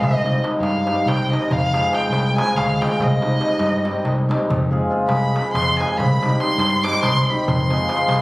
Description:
balkan folk, Balkan wedding band; 281 BPM (eighths); 7/8; straight; F dorian sharp4; A4 = 440 Hz
dark violin; second line; 0.0-8.2 s; Eb5 to D6; -22 LUFS; equal
cimbalom; accompaniment; 0.0-8.2 s; G3 to Ab4; -22 LUFS; left 1 dB
overdriven fingered electric bass; bass; 0.0-8.2 s; C2 to G2; -22 LUFS; equal
darbuka; percussion; 0.0-8.2 s; -24 LUFS; equal
moderate recital hall reverb, RT60 1.4 s; recorded on a phone in the room, club reverb, compression; -16 LUFS; side -20 dB against mid
0.0-8.2 A section
violin solo 0.0-8.2
0.0 Cm; 1.5 Fm; 3.0 Cm; 4.5 Fm; 6.0 Cm; 7.5 Fm

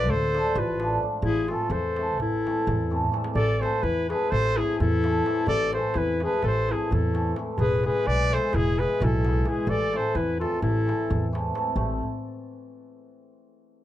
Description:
balkan folk, Balkan wedding band; 257 BPM (eighths); 9/8; straight; A harmonic minor; A4 = 440 Hz
mellow trumpet; melody; 0.0-11.3 s; G#4 to D5; -28 LUFS; right 2 dB
clear clarinet; second line; 0.0-11.3 s; E4 to B4; -28 LUFS; left 5 dB
cimbalom; accompaniment; 0.0-12.0 s; E3 to A4; -31 LUFS; right 1 dB
upright bass; bass; 0.0-12.0 s; E1 to E2; -28 LUFS; equal
darbuka; percussion; 0.1-12.0 s; -31 LUFS; right 2 dB
light reverb; dry, close 1970s-style studio recording; -22 LUFS; side -12 dB against mid
0.0-3.4 A section; 3.4-11.8 B section; 11.8-13.8 C section
speeding up 0.0-13.8; drum fill 2.8-3.4
0.0 Dm; 1.2 Am; 7.6 E; 9.7 Am

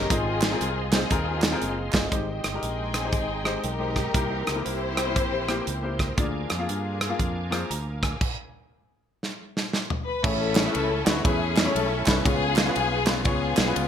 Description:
uptempo gospel; 118 BPM; 4/4; swing 64% on 8ths; Ab major, A major from 10.2 s; A4 = 441 Hz
warm studio string section; melody; 0.0-6.0, 10.1-13.9 s; B3 to C5; -28 LUFS; left 3 dB
clear grand piano; accompaniment; 0.0-13.9 s; Ab2 to Bb5; -31 LUFS; left 4 dB
bright tonewheel organ; sustained chords; 0.0-13.9 s; Ab3 to D6; -36 LUFS; right 3 dB; fast rotary speaker, chorus vibrato
fingered electric bass; bass; 0.0-13.9 s; Gb1 to G2; -31 LUFS; equal
modern studio drum kit; drums; 0.1-13.9 s; crash cymbal, hi-hat, kick drum, ride cymbal, rim click, snare drum, toms; -26 LUFS; right 1 dB; gated reverb
group handclap; percussion; 0.4-2.0, 10.6-13.7 s; -34 LUFS; right 6 dB
warm studio string section; sustained chords; 2.1-8.2 s; E3 to G5; -38 LUFS; left 1 dB
moderate plate reverb, RT60 1.4 s, studio ambience; bright 1980s-style digital production; -23 LUFS; side -9 dB against mid
0.0-2.1 A section; 2.1-10.2 B section; 10.2-13.9 A section
stop 8.2-10.2; drum fill 9.2-10.2
0.1 Ab6; 2.1 Abmaj7; 4.1 C7; 6.2 Bb7/D; 8.2 N.C.; 10.2 Amaj7; 12.3 C#7

